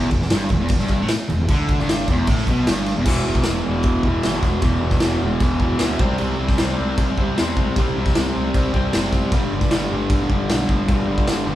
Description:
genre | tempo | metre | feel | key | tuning
garage rock duo or trio | 153 BPM | 4/4 | straight | E minor | A4 = 440 Hz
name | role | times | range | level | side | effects
fuzz guitar | riff | 0.0-11.6 s | E2 to C4 | -21 LUFS | equal | distortion
growling picked electric bass | bass | 0.0-11.6 s | E1 to E2 | -26 LUFS | equal | overdrive
raw garage drum kit | drums | 0.1-11.4 s | crash cymbal, kick drum, snare drum | -20 LUFS | equal | none
room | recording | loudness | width
moderate large studio reverb, RT60 1.1 s | band playing live in one room | -17 LUFS | side -13 dB against mid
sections
0.0-3.1 A section; 3.1-11.6 B section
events
none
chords
0.0 Em; 3.1 E5; 6.0 C5; 9.3 G5

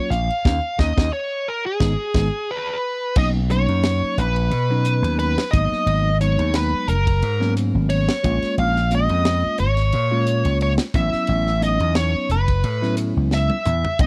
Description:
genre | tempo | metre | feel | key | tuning
electric jazz fusion | 89 BPM | 4/4 | swing 54% on 16ths | unclear | A4 = 440 Hz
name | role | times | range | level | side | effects
bluesy overdriven lead guitar | melody | 0.0-14.1 s | G#4 to E#5 | -26 LUFS | equal | distortion
bell-like tine electric piano | accompaniment | 0.0-14.1 s | F#3 to E#4 | -28 LUFS | equal | none
vintage slap bass | bass | 0.1-14.1 s | F#1 to B2 | -22 LUFS | equal | none
tight funk drum kit | drums | 0.1-14.1 s | crash cymbal, hi-hat, kick drum, ride cymbal, snare drum, toms | -25 LUFS | equal | none
breathy mellow jazz flute | second line | 2.5-14.1 s | A#5 to E#6 | -32 LUFS | equal | none
room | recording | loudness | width
little or no reverb | dry, close 1970s-style studio recording | -20 LUFS | mono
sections
0.0-3.2 A section; 3.2-14.1 B section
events
band accent 0.5-3.2; drum fill 1.8-3.2, 13.3-14.0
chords
0.5 D#5; 1.8 G#m; 3.2 Bmaj9; 5.5 G#m9; 8.2 A#m7; 10.9 A69

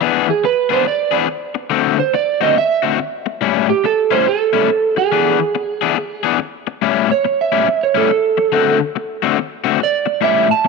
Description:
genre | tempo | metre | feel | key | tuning
blues | 141 BPM | 4/4 | swing 63% on 8ths | unclear | A4 = 440 Hz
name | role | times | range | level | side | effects
crunchy overdriven guitar | riff | 0.0-10.7 s | A2 to G#4 | -18 LUFS | left 15 dB | none
electric slide guitar | melody | 0.3-10.7 s | G4 to A5 | -16 LUFS | right 8 dB | slapback echo
room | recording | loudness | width
moderate plate reverb, RT60 2.7 s | 1960s-style stereo with parts hard left and right | -14 LUFS | side -3 dB against mid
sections
0.0-6.8 A section; 6.8-10.7 B section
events
electric slide guitar solo 6.8-10.7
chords
0.0 E7; 1.7 D7; 3.4 A7; 5.1 E7; 6.8 A7; 8.5 D7

